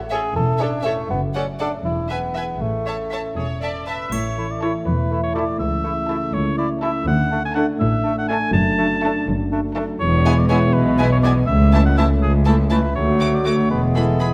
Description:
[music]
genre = cinematic, playful, whimsical film cue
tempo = 81 BPM (dotted quarters)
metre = 6/8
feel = straight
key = A major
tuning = A4 = 444 Hz
[part]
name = concert harp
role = arpeggios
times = 0.0-14.3 s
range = E2 to E5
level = -31 LUFS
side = equal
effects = none
[part]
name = rich studio double bass section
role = bass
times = 0.0-14.3 s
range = E1 to D2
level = -25 LUFS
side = equal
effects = none
[part]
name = warm studio cello section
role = bass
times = 0.0-14.3 s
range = C#2 to B2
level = -25 LUFS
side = equal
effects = none
[part]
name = warm chamber violin section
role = melody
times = 0.1-14.3 s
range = E5 to D6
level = -34 LUFS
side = equal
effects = none
[part]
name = warm chamber violin section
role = second line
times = 0.1-14.3 s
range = E4 to E5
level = -35 LUFS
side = equal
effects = none
[part]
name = clear bassoon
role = accompaniment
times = 0.1-14.3 s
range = E3 to A4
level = -30 LUFS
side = equal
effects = none
[part]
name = rich studio viola section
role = accompaniment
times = 0.1-14.3 s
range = E3 to E5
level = -31 LUFS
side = equal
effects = none
[part]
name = warm cor anglais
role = second line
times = 3.4-14.3 s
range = G#4 to A5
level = -27 LUFS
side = equal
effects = none
[part]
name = dark French horn section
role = sustained chords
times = 4.1-14.3 s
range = G#3 to G#4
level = -28 LUFS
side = equal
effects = none
[part]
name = triangle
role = percussion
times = 4.1-5.1 s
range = none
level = -40 LUFS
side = equal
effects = none
[part]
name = clear clarinet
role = second line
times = 4.4-14.3 s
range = A3 to E4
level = -31 LUFS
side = equal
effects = none
[sound]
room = moderate scoring stage reverb, RT60 1.9 s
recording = none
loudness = -19 LUFS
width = mono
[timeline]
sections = 0.0-4.1 A section; 4.1-14.3 B section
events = none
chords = 0.0 A; 1.1 D/F#; 1.8 E; 2.6 A; 5.6 A/C#; 7.1 D5; 8.5 D/F#; 10.0 E; 11.5 A/C#; 13.0 D; 13.7 E

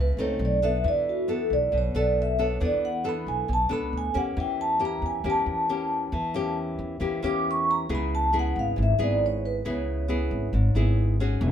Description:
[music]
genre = bossa nova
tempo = 136 BPM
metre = 4/4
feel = straight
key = unclear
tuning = A4 = 440 Hz
[part]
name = vibraphone with soft mallets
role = melody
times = 0.0-11.0 s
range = F#4 to D6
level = -26 LUFS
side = right 1 dB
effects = none
[part]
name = nylon-string guitar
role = accompaniment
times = 0.0-11.5 s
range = G#2 to A4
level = -29 LUFS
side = left 1 dB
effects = none
[part]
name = upright bass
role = bass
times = 0.0-11.5 s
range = E1 to E2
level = -27 LUFS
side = equal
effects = none
[sound]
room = moderate small room reverb, RT60 0.5 s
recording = band playing live in one room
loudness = -23 LUFS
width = side -9 dB against mid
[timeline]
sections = 0.0-11.4 A section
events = vibraphone solo 0.0-11.4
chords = 0.4 B7b9; 0.8 E7sus4; 4.4 A7b9/E; 7.9 C#m7

